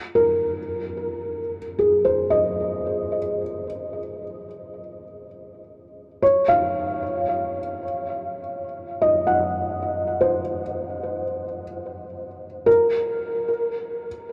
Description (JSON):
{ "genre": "ambient", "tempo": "free time", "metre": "none", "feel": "none", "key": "unclear", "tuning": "A4 = 437 Hz", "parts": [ { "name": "felt-muted upright piano", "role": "solo", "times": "0.2-14.3 s", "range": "Ab4 to Gb5", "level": "-24 LUFS", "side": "equal", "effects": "delay" } ], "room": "wet huge ambient reverb, RT60 8.4 s", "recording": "dark, warm production", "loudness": "-24 LUFS", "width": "mono", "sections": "0.0-12.7 A section; 12.7-14.3 B section", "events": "none", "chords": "0.0 Ab; 6.2 Gb5; 12.7 N.C.", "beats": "free time" }